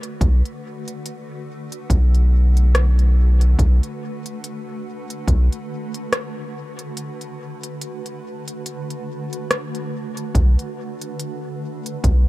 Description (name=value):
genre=ambient dub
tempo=71 BPM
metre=4/4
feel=swing 57% on 16ths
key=B minor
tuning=A4 = 440 Hz
part: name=granular cloud pad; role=sustained chords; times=0.0-12.3 s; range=D3 to B4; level=-30 LUFS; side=right 1 dB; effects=built-in reverb
part: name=organic electronic drum kit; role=drums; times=0.0-12.2 s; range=hi-hat, rim click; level=-25 LUFS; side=equal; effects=dub echo
part: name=soft dub sub bass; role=bass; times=0.2-12.3 s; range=B1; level=-14 LUFS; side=equal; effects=none
part: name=electronic kick drum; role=drums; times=0.2-12.2 s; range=none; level=-21 LUFS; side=equal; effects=none
room=little or no reverb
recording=none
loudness=-18 LUFS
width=side -17 dB against mid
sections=0.0-12.3 A section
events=break 7.0-10.4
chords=0.0 Bm7